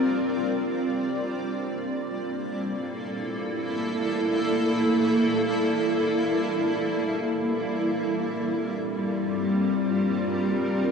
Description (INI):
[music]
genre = ambient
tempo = free time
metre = none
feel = none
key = G dorian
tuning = A4 = 440 Hz
[part]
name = granular cloud pad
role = solo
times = 0.0-10.9 s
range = G3 to D5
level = -23 LUFS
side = equal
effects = built-in reverb, tape echo
[sound]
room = wet huge ambient reverb, RT60 7.5 s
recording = worn, warbling old tape, cassette tape, warbly pitch drift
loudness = -24 LUFS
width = side -6 dB against mid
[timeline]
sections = 0.0-10.9 A section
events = none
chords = 0.0 C9sus4/G; 0.9 Gm69; 7.6 C9sus4/G